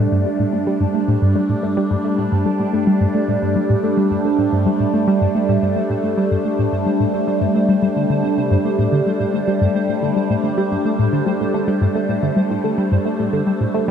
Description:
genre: ambient, sequencer-driven space music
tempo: 109 BPM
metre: 4/4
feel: straight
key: unclear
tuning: A4 = 440 Hz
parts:
  - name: phased analog pad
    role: sustained chords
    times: 0.0-13.9 s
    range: G3 to D4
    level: -18 LUFS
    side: right 1 dB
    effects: phaser, chorus
  - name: tight sequenced synth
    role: riff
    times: 0.0-13.9 s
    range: G2 to A3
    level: -19 LUFS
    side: equal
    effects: chorus, cassette tape, tape echo
  - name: pulsing gated texture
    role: texture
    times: 0.0-13.9 s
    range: C5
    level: -33 LUFS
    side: right 6 dB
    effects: chorus, built-in reverb
room: moderate huge ambient reverb, RT60 9.3 s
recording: none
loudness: -16 LUFS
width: side -8 dB against mid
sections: 0.0-13.9 A section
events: fade-in on synth texture 0.0-13.9; filter sweep on synth arpeggio sound 0.0-13.9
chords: 0.0 Gsus2

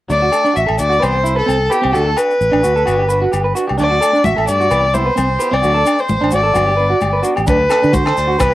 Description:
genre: highlife guitar band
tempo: 130 BPM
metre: 4/4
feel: swing 55% on 16ths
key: D mixolydian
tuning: A4 = 440 Hz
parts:
  - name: dark fiddle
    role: melody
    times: 0.1-8.5 s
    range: G4 to E5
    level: -15 LUFS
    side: left 1 dB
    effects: cassette tape
  - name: electric guitar at the edge of break-up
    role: accompaniment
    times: 0.1-8.5 s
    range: E3 to G4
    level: -27 LUFS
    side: left 3 dB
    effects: lush chorus, cassette tape
  - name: electric guitar at the edge of break-up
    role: arpeggios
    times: 0.1-8.5 s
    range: C4 to B4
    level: -19 LUFS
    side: right 4 dB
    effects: cassette tape
  - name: fingered electric bass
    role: bass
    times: 0.1-8.5 s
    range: G1 to D3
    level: -19 LUFS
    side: equal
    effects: none
  - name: maracas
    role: percussion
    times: 0.1-8.5 s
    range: none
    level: -32 LUFS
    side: left 5 dB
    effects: none
  - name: agogo bells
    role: percussion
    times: 0.3-8.5 s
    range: none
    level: -25 LUFS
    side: left 5 dB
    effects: none
  - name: congas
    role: percussion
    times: 3.8-8.5 s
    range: none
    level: -23 LUFS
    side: left 2 dB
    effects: none
  - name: tight funk drum kit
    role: drums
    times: 7.5-8.5 s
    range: hi-hat, kick drum, rim click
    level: -20 LUFS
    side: equal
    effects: cassette tape
room: light reverb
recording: home recording on cassette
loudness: -12 LUFS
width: side -15 dB against mid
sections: 0.1-7.5 A section; 7.5-8.5 B section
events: none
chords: 0.1 D; 1.0 Cmaj7; 1.9 D; 2.9 Gmaj7; 3.8 D; 4.7 Cmaj7; 5.6 D; 6.6 Gmaj7; 7.5 D

